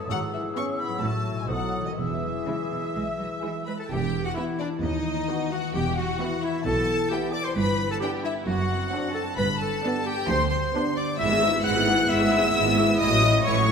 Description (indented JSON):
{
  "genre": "cinematic, playful, whimsical film cue",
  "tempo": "131 BPM",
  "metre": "4/4",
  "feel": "straight",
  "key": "E major, E minor from 3.9 s",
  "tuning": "A4 = 440 Hz",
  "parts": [
    { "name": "mellow hollow concert flute", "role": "second line", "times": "0.0-3.6 s", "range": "D#6 to E6", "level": "-34 LUFS", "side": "equal", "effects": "none" },
    { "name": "warm clarinet", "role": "second line", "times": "0.0-13.7 s", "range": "D4 to F#5", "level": "-30 LUFS", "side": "left 1 dB", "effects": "none" },
    { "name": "concert harp", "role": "arpeggios", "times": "0.0-13.7 s", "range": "F#2 to C#5", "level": "-33 LUFS", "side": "left 5 dB", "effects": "none" },
    { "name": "clear studio violin section", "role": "melody", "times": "0.1-13.7 s", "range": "D5 to F#6", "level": "-29 LUFS", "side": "left 2 dB", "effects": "none" },
    { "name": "warm French horn section", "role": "sustained chords", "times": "0.1-13.7 s", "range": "D#3 to F#4", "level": "-32 LUFS", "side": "left 2 dB", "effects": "none" },
    { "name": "rich studio cello section", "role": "bass", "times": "0.1-13.7 s", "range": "D2 to G#3", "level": "-31 LUFS", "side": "right 3 dB", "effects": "none" },
    { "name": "warm studio double bass section", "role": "bass", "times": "0.1-13.7 s", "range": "E1 to D#2", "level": "-31 LUFS", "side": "right 2 dB", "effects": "none" },
    { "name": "warm studio violin section", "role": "second line", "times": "0.6-13.7 s", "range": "D4 to F#5", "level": "-31 LUFS", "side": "left 3 dB", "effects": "none" },
    { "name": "rich studio viola section", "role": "accompaniment", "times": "0.6-13.7 s", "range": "E3 to G#4", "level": "-32 LUFS", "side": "right 4 dB", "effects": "none" }
  ],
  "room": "wet scoring stage reverb, RT60 2.0 s",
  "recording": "minimal, uncompressed stereo recording",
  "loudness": "-22 LUFS",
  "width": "side -6 dB against mid",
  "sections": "0.0-3.9 A section; 3.9-13.7 B section",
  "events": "none",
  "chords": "0.1 E/G#; 1.0 F#m7/A; 1.5 B7b9; 2.0 E; 3.9 Em; 4.8 B7/D#; 5.7 E5; 7.6 G; 8.5 D7/F#; 9.4 G; 11.2 E/G#; 13.0 F#m7/A"
}